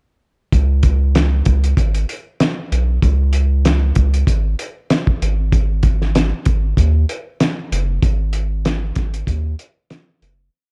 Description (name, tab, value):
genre	hip hop, boom-bap hip-hop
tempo	96 BPM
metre	4/4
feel	swing 55% on 16ths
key	unclear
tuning	A4 = 435 Hz
part	soft dub sub bass	bass	0.5-10.5 s	F#1 to D#2	-18 LUFS	equal	none
part	cloth-damped thuddy drum kit	drums	0.5-10.4 s	hi-hat, kick drum, snare drum	-20 LUFS	equal	none
room	little or no reverb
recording	dark, warm production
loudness	-17 LUFS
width	mono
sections	0.5-10.5 verse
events	fade-out 8.0-10.5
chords	none